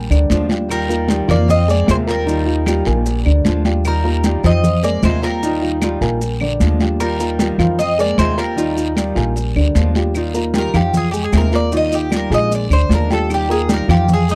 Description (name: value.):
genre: latin, Cuban son and guajira.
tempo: 152 BPM.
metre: 4/4.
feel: straight.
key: Eb major.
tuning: A4 = 440 Hz.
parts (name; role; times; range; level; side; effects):
Cuban tres; melody; 0.0-14.3 s; Eb4 to Eb5; -24 LUFS; equal; none.
oud; second line; 0.0-9.9 s; G3 to C4; -30 LUFS; equal; none.
dark grand piano; arpeggios; 0.0-14.3 s; D3 to Bb5; -24 LUFS; equal; none.
upright bass; bass; 0.0-14.3 s; Bb1 to F2; -20 LUFS; equal; none.
claves; percussion; 0.1-14.1 s; none; -34 LUFS; equal; none.
congas; percussion; 0.1-14.3 s; none; -23 LUFS; equal; none.
maracas; percussion; 0.1-14.3 s; none; -36 LUFS; equal; none.
nylon-string guitar; accompaniment; 0.3-14.1 s; C3 to F4; -25 LUFS; equal; none.
guiro; percussion; 0.3-14.3 s; none; -34 LUFS; equal; none.
room: little or no reverb.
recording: dry, close 1970s-style studio recording.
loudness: -16 LUFS.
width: mono.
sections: 0.0-10.1 A section; 10.1-14.3 B section.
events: Cuban tres solo 10.1-14.3.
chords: 0.0 Bb7; 0.7 Ebadd9; 1.5 Fm7; 2.3 Ebadd9; 3.1 Bb7; 3.8 Ebadd9; 4.6 Fm7; 5.4 Ebadd9; 6.2 Bb7; 7.0 Ebadd9; 7.8 Fm7; 8.6 Ebadd9; 9.4 Bb7; 10.1 Ebadd9; 10.9 Fm7; 11.7 Ebadd9; 12.5 Bb7; 13.3 Ebadd9.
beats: 0.30 | 0.70 1.09 1.48 1.88 | 2.27 2.67 3.06 3.45 | 3.85 4.24 4.64 5.03 | 5.42 5.82 6.21 6.61 | 7.00 7.39 7.79 8.18 | 8.57 8.97 9.36 9.76 | 10.15 10.54 10.94 11.33 | 11.72 12.12 12.51 12.90 | 13.30 13.69 14.09.